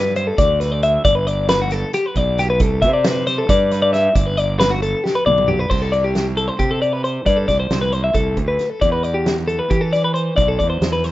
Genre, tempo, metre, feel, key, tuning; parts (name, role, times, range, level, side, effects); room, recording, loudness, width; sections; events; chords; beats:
math rock and midwest emo; 270 BPM (eighths); 7/8; straight; A4 = 440 Hz
twelve-string electric guitar; arpeggios; 0.0-11.1 s; F#4 to E5; -18 LUFS; left 2 dB
fuzz fingered electric bass; bass; 0.0-11.1 s; G1 to E3; -21 LUFS; right 1 dB; overdrive
loose indie drum kit; drums; 0.2-11.1 s; crash cymbal, hi-hat, kick drum, snare drum, toms; -22 LUFS; right 1 dB
light reverb; rough home demo mix, nothing above 7.8 kHz; -15 LUFS; side -15 dB against mid
0.0-5.7 A section; 5.7-11.1 B section
drum fill 5.0-5.7
0.0 Gadd9; 2.6 C69; 4.2 Gadd9; 5.7 Csus2; 8.8 Em7
0.17 0.39 0.61 0.83 | 1.05 1.27 1.50 1.72 1.94 2.16 2.38 | 2.60 2.83 3.05 3.27 3.49 3.71 3.93 | 4.16 4.38 4.60 4.82 5.04 5.26 5.49 | 5.71 5.93 6.15 6.37 6.59 6.82 7.04 | 7.26 7.48 7.71 7.93 8.15 8.37 8.60 | 8.82 9.04 9.26 9.48 9.71 9.93 10.15 | 10.37 10.60 10.82 11.04